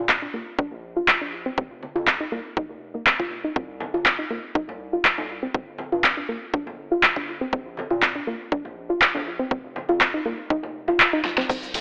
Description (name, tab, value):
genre	progressive house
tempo	121 BPM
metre	4/4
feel	straight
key	unclear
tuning	A4 = 439 Hz
part	soft round pluck	arpeggios	0.0-11.5 s	Bb3 to F4	-30 LUFS	equal	chorus, sidechain pumping, tape echo
part	round analog bass	bass	0.0-11.8 s	D1 to Bb2	-44 LUFS	equal	sidechain pumping
part	big-room dance drum kit	drums	0.1-11.8 s	crash cymbal, handclaps, hi-hat, shaker, snare drum	-22 LUFS	equal	overdrive
part	electronic kick drum	drums	0.1-11.6 s	none	-28 LUFS	equal	none
part	congas	percussion	1.8-11.8 s	none	-38 LUFS	equal	sidechain pumping on perc
room	moderate lush hall reverb, RT60 1.6 s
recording	telephone sound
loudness	-24 LUFS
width	mono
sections	0.0-11.8 A section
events	kick drops out 11.0-11.5; drum fill 11.2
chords	0.0 Bb; 1.6 F5; 3.6 Cm; 5.5 G5; 7.5 Bb; 9.5 F5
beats	0.09 0.59 1.08 | 1.58 2.07 2.57 3.06 | 3.56 4.06 4.55 5.05 | 5.54 6.04 6.54 7.03 | 7.53 8.02 8.52 9.02 | 9.51 10.01 10.50 11.00 | 11.49